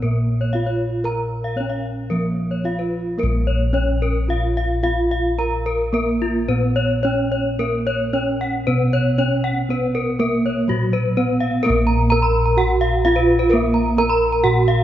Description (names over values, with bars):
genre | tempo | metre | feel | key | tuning
Balinese gamelan | 109-129 BPM | 4/4 | straight | Bb pelog | A4 = 438 Hz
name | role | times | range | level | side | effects
gamelan-type bronze metallophone | melody | 0.0-14.8 s | Gb3 to Bb4 | -21 LUFS | right 2 dB | none
gamelan-type bronze metallophone | arpeggios | 0.0-14.8 s | F4 to Cb6+35c | -22 LUFS | left 2 dB | none
gamelan-type bossed gongs | bass | 0.0-14.8 s | Bb1 to Cb5+35c | -21 LUFS | equal | none
room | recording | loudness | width
moderate concert hall reverb, RT60 2.3 s | nothing above 7.5 kHz | -17 LUFS | side -12 dB against mid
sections
0.0-3.2 A section; 3.2-11.6 B section; 11.6-14.8 C section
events
none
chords
none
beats
0.03 0.53 | 1.05 1.57 2.10 2.64 | 3.19 3.74 4.29 4.84 | 5.39 5.94 6.49 7.04 | 7.59 8.14 8.67 9.19 | 9.70 10.20 10.69 11.17 | 11.64 12.11 12.57 13.04 | 13.51 13.97 14.44